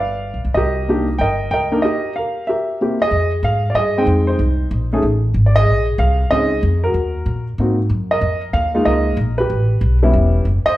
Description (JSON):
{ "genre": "jazz piano trio", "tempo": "188 BPM", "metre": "4/4", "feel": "swing 64% on 8ths", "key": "C minor, F minor from 3.1 s", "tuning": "A4 = 440 Hz", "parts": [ { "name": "warm baby grand piano", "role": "melody", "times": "0.0-10.8 s", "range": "G3 to G5", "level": "-18 LUFS", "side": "equal", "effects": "plate reverb" }, { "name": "upright bass", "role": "bass", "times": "0.0-10.7 s", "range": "E1 to Bb2", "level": "-17 LUFS", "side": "equal", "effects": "none" } ], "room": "wet large studio reverb, RT60 0.9 s", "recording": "heard from further back in the room", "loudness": "-15 LUFS", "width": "side -16 dB against mid", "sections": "0.0-3.1 A section; 3.1-10.8 B section", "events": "none", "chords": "0.0 G7; 0.6 Cm7; 2.5 C7; 3.1 Fm9; 4.4 Bbsus4; 5.0 Ab5; 5.7 Bbm11; 6.9 Ebm; 7.6 Ab9; 8.2 Db69; 9.5 A9" }